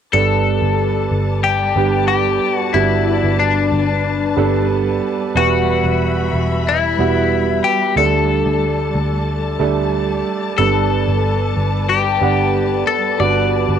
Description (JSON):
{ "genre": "pop", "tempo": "92 BPM", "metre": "4/4", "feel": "straight", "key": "G major", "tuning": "A4 = 439 Hz", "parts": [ { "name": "twelve-string electric guitar", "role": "melody", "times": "0.1-13.8 s", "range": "D4 to D5", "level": "-18 LUFS", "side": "left 8 dB", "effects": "cassette tape" }, { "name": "clear concert grand piano", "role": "accompaniment", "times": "0.1-13.8 s", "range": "G2 to F#5", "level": "-19 LUFS", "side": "right 9 dB", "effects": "cassette tape" }, { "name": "warm studio string section", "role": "sustained chords", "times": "0.1-13.8 s", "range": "G3 to B5", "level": "-25 LUFS", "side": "left 3 dB", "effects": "cassette tape" }, { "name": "vintage muted picked electric bass", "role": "bass", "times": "0.1-13.8 s", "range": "E1 to D2", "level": "-20 LUFS", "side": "equal", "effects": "none" } ], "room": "moderate small room reverb, RT60 0.5 s", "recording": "home recording on cassette", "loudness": "-14 LUFS", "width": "side -8 dB against mid", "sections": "0.1-13.8 A section", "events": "none", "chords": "0.1 Gadd9; 5.4 Em; 8.0 Dsus4; 10.6 Gadd9", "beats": "| 0.14 0.79 1.44 2.10 | 2.75 3.40 4.06 4.71 | 5.36 6.01 6.67 7.32 | 7.97 8.63 9.28 9.93 | 10.58 11.24 11.89 12.54 | 13.19" }